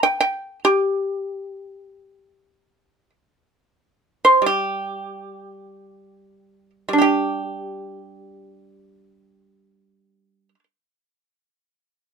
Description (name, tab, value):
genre	chinese traditional, Chinese solo plucked strings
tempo	free time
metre	none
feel	none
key	unclear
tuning	A4 = 440 Hz
part	pipa	solo	0.0-10.6 s	G3 to G5	-18 LUFS	right 1 dB	none
room	light reverb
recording	close, detailed microphones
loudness	-18 LUFS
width	side -6 dB against mid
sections	0.0-7.0 A section; 7.0-12.0 B section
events	slowing down 0.0-7.0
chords	none